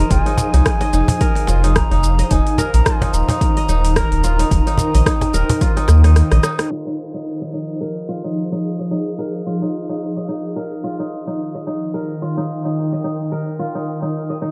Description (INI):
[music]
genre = organic downtempo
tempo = 109 BPM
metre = 4/4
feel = swing 57% on 16ths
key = F minor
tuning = A4 = 440 Hz
[part]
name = breathy bright bansuri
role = melody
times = 0.0-6.2 s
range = Ab5 to Bb5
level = -28 LUFS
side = equal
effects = tape echo
[part]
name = ethereal airy pad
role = sustained chords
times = 0.0-14.5 s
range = Eb3 to G5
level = -27 LUFS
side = equal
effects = ensemble chorus, built-in reverb, sidechain pumping
[part]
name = kora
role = arpeggios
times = 0.0-14.5 s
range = Eb4 to Eb5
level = -26 LUFS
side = equal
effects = low-pass filter, tape echo
[part]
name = round analog bass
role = bass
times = 0.0-6.4 s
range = Eb1 to Eb2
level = -16 LUFS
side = equal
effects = none
[part]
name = wind-like tuned noise texture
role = texture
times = 0.0-6.7 s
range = Eb5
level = -42 LUFS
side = equal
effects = none
[part]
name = deep house drum kit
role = drums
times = 0.1-6.7 s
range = hi-hat, rim click, shaker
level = -26 LUFS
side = equal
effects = overdrive
[part]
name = electronic kick drum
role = drums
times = 0.1-5.7 s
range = none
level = -21 LUFS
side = equal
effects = overdrive
[part]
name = cajon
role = percussion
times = 0.4-6.7 s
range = none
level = -22 LUFS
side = equal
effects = none
[sound]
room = little or no reverb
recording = dark, warm production, low-pass filter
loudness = -18 LUFS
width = mono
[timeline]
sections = 0.0-6.7 A section; 6.7-14.5 B section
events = drum fill 5.9-6.7; break 6.2-6.7; band accent 6.6; filter sweep on ambient pad 6.7-14.5; filter sweep 6.7-14.5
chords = 0.0 Fm7; 2.3 Cm7/Eb; 6.7 Fm7; 11.1 Cm7/Eb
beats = | 0.11 0.66 1.21 1.76 | 2.31 2.86 3.41 3.96 | 4.51 5.06 5.61 6.16 | 6.71 7.26 7.81 8.36 | 8.91 9.46 10.02 10.57 | 11.12 11.67 12.22 12.77 | 13.32 13.87 14.42